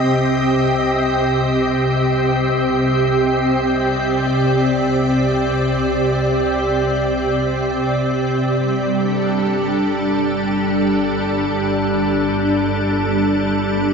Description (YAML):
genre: ambient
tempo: free time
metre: none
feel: none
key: unclear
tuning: A4 = 440 Hz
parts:
  - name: soft additive organ-like pad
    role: sustained chords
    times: 0.0-13.9 s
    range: C3 to Eb5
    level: -16 LUFS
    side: equal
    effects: ensemble chorus, built-in reverb
  - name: muted symphonic double bass section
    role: bass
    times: 0.0-13.9 s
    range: G1 to C2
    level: -30 LUFS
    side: equal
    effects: none
room: wet concert hall reverb, RT60 1.9 s, small room ambience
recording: none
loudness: -16 LUFS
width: side -5 dB against mid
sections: 0.0-13.9 A section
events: fade-in on double bass section 0.0-13.9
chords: 0.0 Cm; 8.5 Gsus2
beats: free time